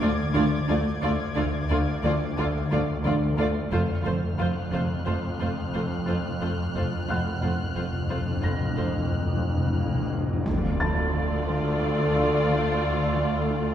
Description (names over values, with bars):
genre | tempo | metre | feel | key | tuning
cinematic, suspense film score | 89 BPM | 5/4 | straight | D minor from 10.5 s | A4 = 442 Hz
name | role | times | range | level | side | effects
muted symphonic violin section | melody | 0.0-13.7 s | C5 to D5 | -34 LUFS | left 2 dB | none
muted studio violin section | second line | 0.0-13.7 s | F4 | -33 LUFS | equal | none
muted studio viola section | accompaniment | 0.0-13.7 s | A3 | -33 LUFS | right 1 dB | none
muted studio cello section | riff | 0.0-13.7 s | F2 to D4 | -32 LUFS | right 1 dB | none
muted studio cello section | bass | 0.0-13.7 s | D2 to F2 | -31 LUFS | equal | none
muted studio double bass section | bass | 0.0-13.7 s | F1 to D2 | -30 LUFS | right 1 dB | none
swarming drone | drone | 0.0-13.7 s | D2 to F2 | -32 LUFS | equal | built-in reverb
felt-muted upright piano | texture | 0.0-13.7 s | Gb5 to Bb6 | -35 LUFS | equal | none
muted studio violin section | texture | 0.0-10.1 s | D6 to Ab6 | -38 LUFS | left 4 dB | none
timpani | percussion | 3.7-11.4 s | F2 to D3 | -29 LUFS | left 1 dB | none
impact | sound effects | 10.5-13.7 s | none | -32 LUFS | equal | none
room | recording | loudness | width
wet scoring stage reverb, RT60 1.4 s | heard from further back in the room | -23 LUFS | side -10 dB against mid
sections
0.0-10.5 A section; 10.5-13.7 B section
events
timpani fill 3.7-10.5; impact 10.5-13.7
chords
0.0 Dm; 3.7 F; 10.5 Dm